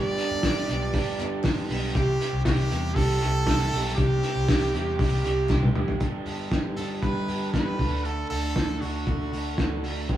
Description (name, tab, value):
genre	jangly indie pop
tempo	118 BPM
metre	4/4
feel	straight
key	unclear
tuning	A4 = 440 Hz
part	brilliant trumpet	melody	0.0-9.8 s	F#4 to D5	-30 LUFS	right 2 dB	none
part	raw garage guitar	accompaniment	0.0-10.2 s	G2 to G4	-34 LUFS	right 5 dB	overdrive
part	twelve-string electric guitar	arpeggios	0.0-10.2 s	G2 to G4	-32 LUFS	left 1 dB	none
part	vintage muted picked electric bass	bass	0.0-10.2 s	F#1 to F2	-29 LUFS	equal	none
part	cloth-damped thuddy drum kit	drums	0.2-10.2 s	hi-hat, kick drum, snare drum, toms	-26 LUFS	equal	none
part	group handclap	percussion	0.4-5.6 s	none	-45 LUFS	left 6 dB	none
room	moderate studio reverb, RT60 0.8 s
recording	band playing live in one room, small room ambience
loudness	-23 LUFS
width	side -12 dB against mid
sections	0.0-6.0 A section; 6.0-10.2 B section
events	drum fill 5.5-6.0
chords	0.0 G; 2.0 C; 6.0 G; 7.8 D